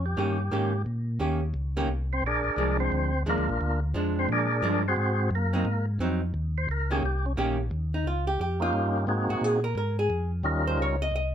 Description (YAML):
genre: soul jazz organ trio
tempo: 175 BPM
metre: 4/4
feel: swing 64% on 8ths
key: unclear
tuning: A4 = 440 Hz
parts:
  - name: percussive tonewheel organ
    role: melody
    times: 0.0-11.0 s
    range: G3 to D5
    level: -28 LUFS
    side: equal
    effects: slow rotary speaker
  - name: mellow tonewheel organ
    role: bass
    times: 0.0-11.3 s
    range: Bb1 to Bb2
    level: -28 LUFS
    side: equal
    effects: slow rotary speaker
  - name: archtop guitar, miked and amplified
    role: accompaniment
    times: 0.2-11.3 s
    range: Eb3 to Eb5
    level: -29 LUFS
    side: right 1 dB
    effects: none
room: light reverb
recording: close, detailed microphones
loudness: -25 LUFS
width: side -9 dB against mid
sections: 0.0-7.7 A section; 7.7-11.3 A section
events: tonewheel organ solo 0.0-7.7; hollow-body jazz guitar solo 7.7-11.3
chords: 0.0 Eb7; 2.2 Bb7; 5.0 Ab7; 6.3 Eb7; 9.1 Ab7; 10.4 Eb7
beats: 0.17 0.52 | 0.86 1.20 1.55 1.89 | 2.23 2.57 2.92 3.26 | 3.60 3.94 4.29 4.63 | 4.97 5.31 5.66 6.00 | 6.34 6.68 7.03 7.37 | 7.71 8.05 8.39 8.74 | 9.08 9.42 9.76 10.11 | 10.45 10.79 11.13